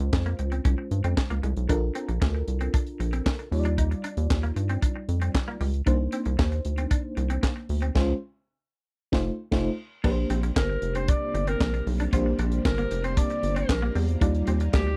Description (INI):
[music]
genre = early-eighties boogie funk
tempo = 115 BPM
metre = 4/4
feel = straight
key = Bb major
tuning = A4 = 441 Hz
[part]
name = FM electric piano with tremolo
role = accompaniment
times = 0.0-15.0 s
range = G3 to D5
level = -34 LUFS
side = equal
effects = none
[part]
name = rubbery square bass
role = bass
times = 0.0-14.9 s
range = F1 to G2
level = -29 LUFS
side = equal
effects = none
[part]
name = tight funk drum kit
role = drums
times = 0.0-14.9 s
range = crash cymbal, handclaps, hi-hat, kick drum, snare drum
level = -28 LUFS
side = equal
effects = none
[part]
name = semi-hollow electric guitar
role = riff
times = 0.3-14.9 s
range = G3 to F4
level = -38 LUFS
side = equal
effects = ensemble chorus
[part]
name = string machine, violins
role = sustained chords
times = 10.0-15.0 s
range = C3 to F4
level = -41 LUFS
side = equal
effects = none
[part]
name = clear alto saxophone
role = melody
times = 10.6-15.0 s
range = G4 to D5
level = -33 LUFS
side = equal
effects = none
[sound]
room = little or no reverb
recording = dry, close 1970s-style studio recording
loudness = -26 LUFS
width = mono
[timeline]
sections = 0.0-10.0 A section; 10.0-15.0 B section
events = band accent 8.0-10.0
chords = 0.0 Dbmaj7; 1.7 Bbmaj7; 3.5 Ebmaj9; 5.9 Cm9; 8.0 Dbmaj7; 9.0 F7; 10.0 Bb69; 14.2 Ebmaj9